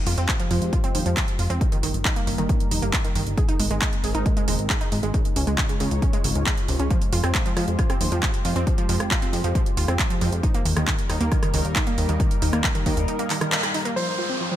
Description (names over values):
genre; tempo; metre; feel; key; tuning
uplifting trance; 136 BPM; 4/4; straight; F minor; A4 = 440 Hz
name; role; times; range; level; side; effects
lush unison pad; sustained chords; 0.0-14.6 s; G3 to G5; -31 LUFS; equal; chorus, phaser, sidechain pumping
wide unison pluck; arpeggios; 0.1-14.5 s; Ab2 to Ab4; -28 LUFS; right 2 dB; cassette tape, sidechain pumping, tape echo
plucky analog bass; bass; 0.1-13.1 s; Eb1 to F2; -24 LUFS; equal; sidechain pumping
techno drum kit; drums; 0.1-14.1 s; crash cymbal, handclaps, hi-hat, rim click; -27 LUFS; right 1 dB; low-pass filter on hats, low-pass filter on snare, low-pass filter on cymbals, low-pass filter on room
electronic kick drum; drums; 0.3-12.9 s; none; -23 LUFS; equal; none
warm grand piano; second line; 14.0-14.5 s; C5; -27 LUFS; left 2 dB; tape echo
downlifter; sound effects; 14.0-14.6 s; none; -31 LUFS; equal; none
room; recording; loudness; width
light reverb, digital ambience; none; -20 LUFS; side -12 dB against mid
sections
0.0-14.0 A section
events
filter sweep on analog synth pad 0.0-14.0; band accent 13.5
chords
0.0 Fmadd9; 1.6 Eb/G; 3.4 Abadd9; 5.1 Dbadd9; 6.9 Fmadd9; 10.4 Eb; 14.0 Fmadd9